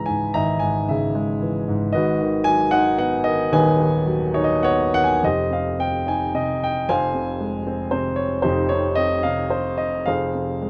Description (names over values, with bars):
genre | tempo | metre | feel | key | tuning
classical, lyrical solo piano | 101-118 BPM | 3/4 | rubato | G# minor, F minor from 5.2 s | A4 = 440 Hz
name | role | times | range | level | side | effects
dark baby grand piano | solo | 0.0-10.7 s | D#1 to B5 | -21 LUFS | equal | none
room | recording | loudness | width
light reverb | none | -21 LUFS | mono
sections
0.0-5.2 A section; 5.2-10.7 B section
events
grand piano fill 4.1-5.2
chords
0.0 C#madd9; 1.9 G#m7; 5.2 Fm9; 6.9 Fm; 8.4 Eb13/F; 10.1 Fm